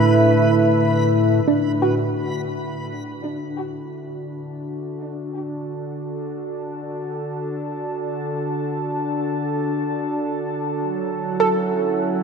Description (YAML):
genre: ambient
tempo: free time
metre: none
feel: none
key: D major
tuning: A4 = 440 Hz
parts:
  - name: warm analog pad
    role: sustained chords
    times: 0.0-12.2 s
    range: A2 to A5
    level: -21 LUFS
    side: equal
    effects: wide subtle chorus
  - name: organ-like drone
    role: drone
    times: 0.0-1.6 s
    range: D3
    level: -30 LUFS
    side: left 1 dB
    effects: ensemble chorus, built-in reverb
  - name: backwards swelling texture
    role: texture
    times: 0.0-1.5 s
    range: B4 to B5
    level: -28 LUFS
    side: right 2 dB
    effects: built-in reverb
  - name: soft round pluck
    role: arpeggios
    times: 1.5-3.1, 11.4-12.2 s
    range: D4 to A4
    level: -23 LUFS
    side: right 2 dB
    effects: analog chorus, diffuse ambient delay
room: wet cathedral reverb, RT60 5.3 s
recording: none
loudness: -20 LUFS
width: side -6 dB against mid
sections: 0.0-1.5 A section; 1.5-12.2 B section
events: fade-in on analog synth pad 1.5-12.2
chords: 0.0 Asus2; 1.5 D; 10.8 F#m7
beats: free time